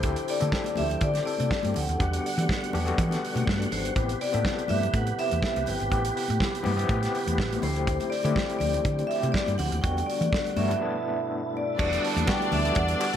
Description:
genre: disco.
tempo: 123 BPM.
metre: 4/4.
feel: straight.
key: A dorian.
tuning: A4 = 441 Hz.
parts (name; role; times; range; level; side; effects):
vibraphone with hard mallets; melody; 0.0-13.2 s; C5 to A5; -30 LUFS; left 1 dB; none.
overdriven tine electric piano; accompaniment; 0.0-13.2 s; G2 to A4; -32 LUFS; left 3 dB; medium tremolo.
tonewheel organ; sustained chords; 0.0-13.2 s; B2 to F#5; -35 LUFS; right 4 dB; overdrive, chorus vibrato, slow rotary speaker.
hollow-body short-scale fingered electric bass; bass; 0.0-13.2 s; E1 to E3; -28 LUFS; equal; none.
warm soul drum kit; drums; 0.0-13.2 s; crash cymbal, hi-hat, kick drum, snare drum; -30 LUFS; right 1 dB; none.
congas; percussion; 0.4-13.2 s; none; -36 LUFS; left 6 dB; none.
clear studio string section; second line; 11.8-13.2 s; D4 to D5; -29 LUFS; left 1 dB; none.
group handclap; percussion; 12.3-13.1 s; none; -36 LUFS; right 10 dB; none.
room: light reverb.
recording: none.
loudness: -24 LUFS.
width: side -9 dB against mid.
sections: 0.0-11.8 A section; 11.8-13.2 B section.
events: break 10.8-11.8.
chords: 0.0 D7sus4; 2.0 Em9; 4.0 Am9; 7.6 D7sus4; 9.8 Em9; 10.8 G69; 11.8 Em9.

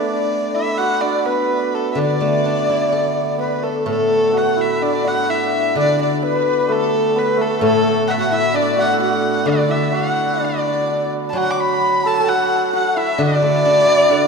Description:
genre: chinese traditional, Chinese chamber ensemble.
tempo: 64 BPM.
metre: 2/4.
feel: rubato.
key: D gong mode.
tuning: A4 = 440 Hz.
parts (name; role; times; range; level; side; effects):
rich erhu; melody; 0.0-14.3 s; A4 to D6; -19 LUFS; equal; none.
hammered dulcimer; second line; 0.0-14.3 s; A3 to A4; -21 LUFS; right 4 dB; none.
mellow hollow large dizi; second line; 0.0-14.3 s; A4 to B5; -22 LUFS; left 5 dB; none.
steel-string zither; accompaniment; 2.0-14.3 s; A2 to A4; -22 LUFS; left 3 dB; none.
room: wet church reverb, RT60 3.3 s.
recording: recorded in a church or concert hall.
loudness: -15 LUFS.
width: side -4 dB against mid.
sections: 0.0-3.9 A section; 3.9-14.3 B section.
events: none.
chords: none.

